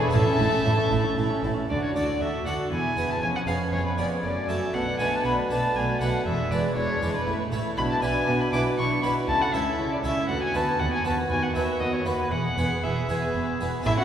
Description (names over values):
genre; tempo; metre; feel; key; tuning
classical, baroque-style concerto movement with solo episodes; 118 BPM; 3/4; straight; unclear; A4 = 440 Hz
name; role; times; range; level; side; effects
warm studio violin section; second line; 0.0-14.0 s; C#4 to A4; -32 LUFS; left 1 dB; none
dark chamber viola section; accompaniment; 0.0-14.0 s; G#3 to E4; -32 LUFS; right 1 dB; none
harpsichord; accompaniment; 0.0-14.0 s; C#2 to C#5; -30 LUFS; right 1 dB; none
dark violin; melody; 0.1-14.0 s; B4 to D6; -28 LUFS; left 1 dB; none
warm chamber violin section; melody; 0.1-14.0 s; G#4 to A5; -37 LUFS; left 1 dB; none
rich chamber cello section; bass; 0.1-13.9 s; C#2 to B2; -31 LUFS; right 2 dB; none
rich chamber double bass section; bass; 0.1-13.9 s; E1 to D#2; -32 LUFS; right 2 dB; none
room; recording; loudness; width
wet church reverb, RT60 2.8 s; recorded in a church or concert hall; -23 LUFS; side -9 dB against mid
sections
0.0-1.7 A section; 1.7-13.9 B section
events
none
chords
0.1 A; 1.7 D; 2.7 E; 3.2 C#7/E#; 4.2 F#m; 4.7 Bm7; 6.3 E7; 7.3 A; 7.8 E5/B; 9.3 A/C#; 10.3 Bm7/D; 10.8 B/D#; 12.3 E